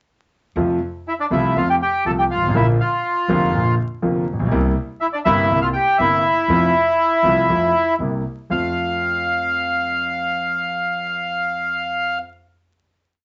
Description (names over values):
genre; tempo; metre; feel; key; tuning
tango; 121 BPM; 4/4; rubato; F major; A4 = 440 Hz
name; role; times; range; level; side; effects
clear concert grand piano; accompaniment; 0.6-12.2 s; F1 to F4; -24 LUFS; equal; none
upright bass; bass; 0.6-8.7 s; F1 to F2; -28 LUFS; equal; none
bandoneon; melody; 1.1-12.2 s; D4 to A5; -20 LUFS; equal; none
room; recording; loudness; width
moderate studio reverb, RT60 0.6 s; vinyl crackle, nothing above 7.8 kHz; -19 LUFS; mono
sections
0.6-8.5 A section; 8.5-12.4 final chord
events
none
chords
0.6 F; 2.5 Bb; 4.5 C7; 6.5 F; 8.0 C7; 8.5 F